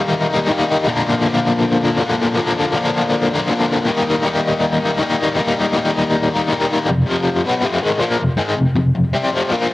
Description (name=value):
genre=rock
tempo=160 BPM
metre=4/4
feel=straight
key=unclear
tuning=A4 = 442 Hz
part: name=crunchy overdriven guitar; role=solo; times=0.0-9.7 s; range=F2 to Eb4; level=-15 LUFS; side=left 2 dB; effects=tremolo, tape echo
room=light reverb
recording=home recording on cassette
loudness=-15 LUFS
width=side -17 dB against mid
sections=0.0-6.9 A section; 6.9-9.7 B section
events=none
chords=0.0 Eb; 0.9 Bb; 3.9 Eb; 6.9 F5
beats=0.12 0.50 | 0.87 1.25 1.62 2.00 | 2.38 2.75 3.13 3.51 | 3.88 4.26 4.63 5.01 | 5.39 5.76 6.14 6.51 | 6.89 7.27 7.64 8.02 | 8.39 8.77 9.15 9.53